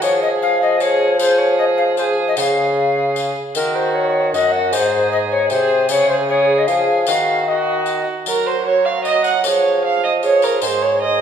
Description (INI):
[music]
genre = classical, renaissance-style consort dance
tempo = 153 BPM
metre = 3/4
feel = straight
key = unclear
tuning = A4 = 440 Hz
[part]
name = alto recorder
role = melody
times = 0.0-11.2 s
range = Gb4 to Gb5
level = -18 LUFS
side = left 4 dB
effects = none
[part]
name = dark violin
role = second line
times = 0.0-11.2 s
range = Gb4 to Gb5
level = -19 LUFS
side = right 4 dB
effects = none
[part]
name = warm bassoon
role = bass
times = 0.0-11.2 s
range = Gb2 to Gb3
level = -20 LUFS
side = right 1 dB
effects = none
[part]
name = tambourine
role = percussion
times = 0.0-10.8 s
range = none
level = -28 LUFS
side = left 6 dB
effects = none
[sound]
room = wet recital hall reverb, RT60 1.6 s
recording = heard from further back in the room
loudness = -14 LUFS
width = side -8 dB against mid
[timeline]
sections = 0.0-8.3 A section; 8.3-11.2 B section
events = none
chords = 0.0 Db/F; 2.4 Db; 3.6 Ebm; 4.7 Ab; 5.9 Db; 7.1 Ebm; 8.3 N.C.; 9.4 Db/F; 10.6 Ab